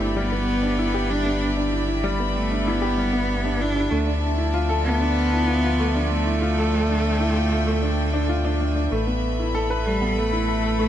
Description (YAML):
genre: piano and strings electronica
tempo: 96 BPM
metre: 4/4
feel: straight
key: unclear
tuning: A4 = 440 Hz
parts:
  - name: clear cello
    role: melody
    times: 0.0-10.9 s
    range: G3 to D4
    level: -25 LUFS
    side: right 1 dB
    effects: ping-pong delay
  - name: rich chamber string section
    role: sustained chords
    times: 0.0-10.9 s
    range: F3 to B5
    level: -28 LUFS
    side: equal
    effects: none
  - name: warm upright piano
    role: riff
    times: 0.0-10.9 s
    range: G3 to B4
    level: -26 LUFS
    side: left 1 dB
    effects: ping-pong delay
  - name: round analog bass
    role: bass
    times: 0.0-10.9 s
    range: G1 to D2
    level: -25 LUFS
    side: equal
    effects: none
room: light reverb, small room ambience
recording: nothing above 11.0 kHz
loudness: -20 LUFS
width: side -11 dB against mid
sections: 0.0-10.9 A section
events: none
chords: 0.0 G6; 3.9 Dmadd9; 8.9 Asus2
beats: 0.17 0.79 | 1.42 2.04 2.67 3.29 | 3.92 4.54 5.17 5.79 | 6.42 7.04 7.67 8.29 | 8.92 9.54 10.17 10.79